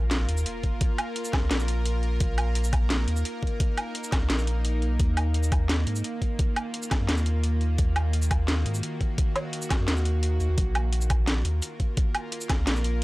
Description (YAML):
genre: half-time drum and bass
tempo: 172 BPM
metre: 4/4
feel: half-time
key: unclear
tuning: A4 = 440 Hz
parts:
  - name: bowed-like drone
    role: sustained chords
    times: 0.0-13.0 s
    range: Eb3 to Bb4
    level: -34 LUFS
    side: right 1 dB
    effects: built-in reverb, sidechain pumping
  - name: saturated sub bass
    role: bass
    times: 0.0-13.0 s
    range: Bb1 to Ab2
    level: -25 LUFS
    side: equal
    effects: none
  - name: sub drop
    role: sound effects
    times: 0.3-0.8 s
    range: none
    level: -40 LUFS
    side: equal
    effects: none
  - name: drum and bass drum kit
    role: drums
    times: 0.1-12.9 s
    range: hi-hat, shaker, snare drum, woodblock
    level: -29 LUFS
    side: equal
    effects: none
  - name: electronic kick drum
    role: drums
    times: 0.6-12.6 s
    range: none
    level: -25 LUFS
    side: equal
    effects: overdrive
room: little or no reverb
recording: dry, gritty hardware recording, transformer saturation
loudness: -23 LUFS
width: side -20 dB against mid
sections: 0.0-13.0 A section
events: impact 0.0-0.8; kick drops out 9.9-10.6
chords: 0.0 Bb5; 5.0 Ebm; 10.6 Bb5